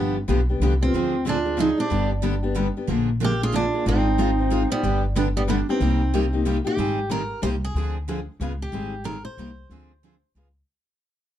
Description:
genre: acoustic string swing (jazz manouche).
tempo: 185 BPM.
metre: 3/4.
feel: swing 61% on 8ths.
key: unclear.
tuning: A4 = 441 Hz.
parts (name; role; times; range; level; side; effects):
picked steel-string acoustic guitar; melody; 0.0-10.3 s; G3 to C5; -26 LUFS; right 1 dB; plate reverb.
warm clarinet; second line; 0.0-6.5 s; B3 to Bb4; -28 LUFS; right 7 dB; none.
picked steel-string acoustic guitar; accompaniment; 0.0-10.5 s; C3 to C5; -27 LUFS; left 5 dB; none.
picked steel-string acoustic guitar; accompaniment; 0.0-10.5 s; C3 to C5; -30 LUFS; right 7 dB; none.
upright bass; bass; 0.0-10.6 s; G1 to D2; -25 LUFS; equal; none.
room: light reverb.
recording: dark, warm production.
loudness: -20 LUFS.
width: side -11 dB against mid.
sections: 0.0-6.8 A section; 6.8-10.7 B section.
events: fade-out 6.8-10.7.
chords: 0.0 G7; 0.9 Dm7b5; 1.9 G; 2.9 Bb7; 3.9 Fm7/Ab; 4.8 G; 5.8 Cm7; 6.8 Abmaj9; 7.4 Cm7; 7.8 Dm7b5; 8.4 Db7; 8.7 Abmaj7; 9.4 Cm7; 9.7 Dm7b5; 10.4 Db7.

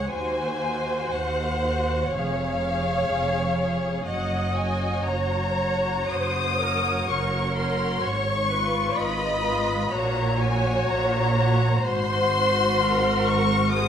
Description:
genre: classical, slow romantic movement for string orchestra.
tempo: 61 BPM.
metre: 4/4.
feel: uneven beats, rubato.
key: unclear.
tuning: A4 = 437 Hz.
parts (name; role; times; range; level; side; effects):
rich studio violin section; melody; 0.0-13.9 s; F5 to Eb6; -27 LUFS; left 4 dB; none.
rich studio violin section; second line; 0.0-13.9 s; F4 to Db5; -28 LUFS; left 1 dB; none.
rich studio viola section; accompaniment; 0.0-13.9 s; Ab4 to Eb5; -28 LUFS; right 1 dB; none.
rich studio cello section; bass; 0.0-13.9 s; Eb2 to Bb2; -29 LUFS; right 2 dB; none.
rich studio double bass section; bass; 0.1-13.9 s; F1 to Eb2; -29 LUFS; right 2 dB; none.
room: moderate scoring stage reverb, RT60 1.7 s.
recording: none.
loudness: -21 LUFS.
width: side -8 dB against mid.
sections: 0.0-13.9 A section.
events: none.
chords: 0.1 Cdim/Eb; 2.1 Db/F; 4.1 Gb; 8.0 Fdim/Ab; 9.9 Gb/Bb; 11.9 Ab7.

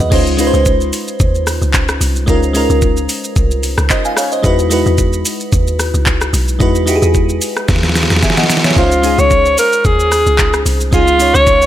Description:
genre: amapiano.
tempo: 111 BPM.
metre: 4/4.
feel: swing 55% on 16ths.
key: Db major.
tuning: A4 = 442 Hz.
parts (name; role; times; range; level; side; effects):
crystalline FM electric piano; accompaniment; 0.0-11.7 s; F#3 to Ab5; -16 LUFS; equal; chorus.
deep log drum bass; bass; 0.0-11.7 s; B1 to E2; -15 LUFS; equal; none.
smooth R&B drum kit; drums; 0.0-11.7 s; crash cymbal, handclaps, hi-hat, kick drum, rim click, shaker, snare drum, toms; -15 LUFS; equal; none.
warm alto saxophone; melody; 8.8-11.7 s; F4 to Db5; -11 LUFS; equal; tape echo.
room: light reverb.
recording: none.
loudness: -10 LUFS.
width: side -12 dB against mid.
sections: 0.0-11.7 A section.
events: drum fill 7.7-8.8.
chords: 0.1 Dbmaj9; 4.4 Emaj9; 8.8 Dbmaj9.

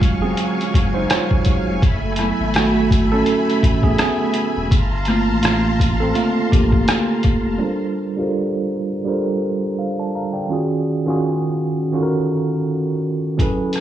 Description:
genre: lo-fi hip hop.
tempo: 83 BPM.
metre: 4/4.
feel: swing 57% on 16ths.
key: unclear.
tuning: A4 = 439 Hz.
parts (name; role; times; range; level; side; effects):
tine electric piano; accompaniment; 0.0-13.8 s; Eb3 to Bb5; -19 LUFS; right 2 dB; medium stereo tremolo, cassette tape, low-pass filter.
string machine, violas; sustained chords; 0.0-7.6 s; Gb3 to Db6; -23 LUFS; equal; ensemble chorus, low-pass filter.
saturated sub bass; bass; 0.0-7.6 s; E1 to Bb1; -23 LUFS; equal; none.
lo-fi sampler-style drum kit; drums; 0.0-7.4, 13.4-13.8 s; hi-hat, kick drum, rim click; -18 LUFS; equal; vintage 12-bit sampler grit.
room: light reverb, digital ambience.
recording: cassette tape, studio reverb.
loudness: -16 LUFS.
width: side -11 dB against mid.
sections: 0.0-7.6 A section; 7.6-13.8 B section.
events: tine electric piano solo 0.0-7.6.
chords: 0.0 Ebm11; 1.8 F#m11; 4.7 Gm11; 10.5 Ebm11.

